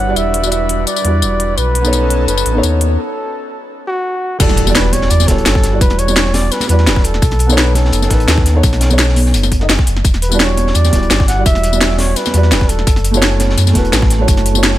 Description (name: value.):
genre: liquid drum and bass.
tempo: 170 BPM.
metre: 4/4.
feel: swing 53% on 16ths.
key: E dorian.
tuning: A4 = 439 Hz.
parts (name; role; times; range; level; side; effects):
breathy flugelhorn; melody; 0.0-13.2 s; F#4 to F#5; -20 LUFS; equal; low-pass filter, tape echo.
felt-muted upright piano; accompaniment; 0.0-14.8 s; G3 to D#5; -19 LUFS; right 1 dB; tape echo.
airy breathy pad; sustained chords; 0.0-3.0 s; G3 to B4; -24 LUFS; left 2 dB; chorus.
sub bass with octave; bass; 0.0-14.8 s; D1 to F#2; -14 LUFS; equal; none.
drum and bass drum kit; drums; 0.2-14.7 s; crash cymbal, hi-hat, snare drum, tambourine; -17 LUFS; left 2 dB; small room ambience.
crunchy breakbeat drum kit; drums; 4.4-14.8 s; hi-hat, snare drum; -24 LUFS; equal; high-pass filter on hats, small room ambience, high-pass filter on snare, high-pass filter on room.
electronic kick drum; drums; 4.4-14.4 s; none; -13 LUFS; equal; small room ambience.
impact; sound effects; 4.4-5.8 s; none; -20 LUFS; equal; none.
congas; percussion; 4.7-14.6 s; none; -24 LUFS; right 3 dB; none.
room: studio ambience.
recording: none.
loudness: -10 LUFS.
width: side -14 dB against mid.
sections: 0.0-4.4 A section; 4.4-14.8 B section.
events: build-up 0.0-4.4; break 3.0-4.4; drop 4.4-14.8; impact 4.4-5.8.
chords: 0.0 Em9; 1.6 B9; 4.4 Em9; 7.2 B9; 10.0 Em9; 12.9 F#m7.